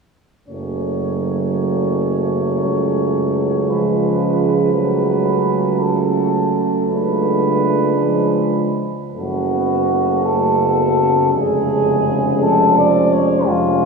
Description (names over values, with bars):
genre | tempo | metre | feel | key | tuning
classical, hymn-like piece for brass band | 50-58 BPM (dotted quarters) | 6/8 | rubato | F# minor | A4 = 442 Hz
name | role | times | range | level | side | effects
dark cornet | melody | 0.5-13.9 s | E#4 to D5 | -20 LUFS | left 1 dB | none
mellow French horn section | second line | 0.5-13.8 s | A3 to D4 | -24 LUFS | right 2 dB | none
clear euphonium | accompaniment | 0.5-13.9 s | C#3 to G#3 | -22 LUFS | right 4 dB | none
clear trombone section | accompaniment | 0.5-13.9 s | F#3 to C#4 | -23 LUFS | left 1 dB | none
warm tuba | bass | 0.5-13.9 s | E#1 to C#2 | -21 LUFS | right 2 dB | none
room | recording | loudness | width
wet church reverb, RT60 3.2 s | recorded in a church or concert hall, studio ambience | -15 LUFS | side -4 dB against mid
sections
0.5-9.2 A section; 9.2-13.9 B section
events
none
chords
0.5 F#m; 2.6 C#7; 4.7 F#m/C#; 6.9 C#7b9; 9.2 F#m; 11.3 C#/E#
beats
| 0.48 1.58 | 2.65 3.69 | 4.73 5.79 | 6.87 7.99 | 9.15 10.26 | 11.34 12.43 | 13.49